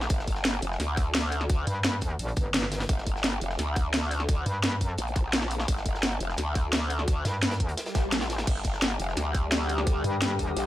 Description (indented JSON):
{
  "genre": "dark technical drum and bass",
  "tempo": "172 BPM",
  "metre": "4/4",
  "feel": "straight",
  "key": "G minor",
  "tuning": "A4 = 440 Hz",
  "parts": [
    { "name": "growl bass", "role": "bass", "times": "0.0-10.7 s", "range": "F1 to D2", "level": "-29 LUFS", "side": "equal", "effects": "chorus, sidechain pumping" },
    { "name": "crunchy breakbeat drum kit", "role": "drums", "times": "0.0-10.6 s", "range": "hi-hat, snare drum", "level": "-39 LUFS", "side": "equal", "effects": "high-pass filter on hats, studio reverb, high-pass filter on snare, high-pass filter on room" },
    { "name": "drum and bass drum kit", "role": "drums", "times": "0.0-10.6 s", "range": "crash cymbal, hi-hat, snare drum", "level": "-28 LUFS", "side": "equal", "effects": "studio reverb" },
    { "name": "electronic kick drum", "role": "drums", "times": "0.1-10.5 s", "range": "none", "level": "-27 LUFS", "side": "equal", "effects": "studio reverb" },
    { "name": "metallic wobble bass", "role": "bass", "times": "1.7-5.0, 7.3-7.8, 10.0-10.6 s", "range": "G1 to G2", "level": "-29 LUFS", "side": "equal", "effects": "chorus" },
    { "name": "swell", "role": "sound effects", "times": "7.8-8.5 s", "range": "none", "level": "-36 LUFS", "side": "equal", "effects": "none" },
    { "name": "metallic inharmonic drone", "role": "sustained chords", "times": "8.9-10.7 s", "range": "D3 to G4", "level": "-33 LUFS", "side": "left 4 dB", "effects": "chorus, built-in reverb, sidechain pumping" }
  ],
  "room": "studio reverb",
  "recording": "none",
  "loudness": "-25 LUFS",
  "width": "side -14 dB against mid",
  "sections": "0.0-10.7 A section",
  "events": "swell 7.8-8.5",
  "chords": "0.0 G5",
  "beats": "| 0.10 0.45 0.80 1.15 | 1.50 1.84 2.19 2.54 | 2.89 3.24 3.59 3.94 | 4.29 4.63 4.98 5.33 | 5.68 6.03 6.38 6.73 | 7.08 7.43 7.78 8.12 | 8.47 8.82 9.17 9.52 | 9.87 10.22 10.57"
}